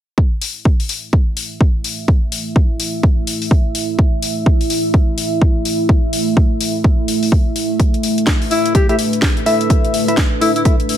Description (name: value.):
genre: bass house.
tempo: 126 BPM.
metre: 4/4.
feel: swing 61% on 16ths.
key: unclear.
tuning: A4 = 440 Hz.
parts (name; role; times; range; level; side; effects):
deep dark ambient pad; sustained chords; 1.5-11.0 s; A3 to E5; -20 LUFS; right 1 dB; chorus, built-in reverb, sidechain pumping.
electronic kick drum; drums; 0.2-10.8 s; none; -13 LUFS; equal; overdrive.
house drum kit; drums; 0.4-11.0 s; hi-hat, snare drum; -21 LUFS; left 3 dB; overdrive.
breathy alto saxophone; melody; 8.5-10.6 s; E4 to G4; -18 LUFS; left 3 dB; ping-pong delay.
percussive organ stab; stabs; 8.9-10.8 s; A3 to E5; -18 LUFS; left 1 dB; chorus, sidechain pumping, ping-pong delay.
room: light reverb.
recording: none.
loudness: -13 LUFS.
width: side -11 dB against mid.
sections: 0.2-11.0 A section.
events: none.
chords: 0.2 A5.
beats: | 0.18 0.65 1.13 1.61 | 2.08 2.56 3.03 3.51 | 3.99 4.46 4.94 5.42 | 5.89 6.37 6.84 7.32 | 7.80 8.27 8.75 9.22 | 9.70 10.18 10.65.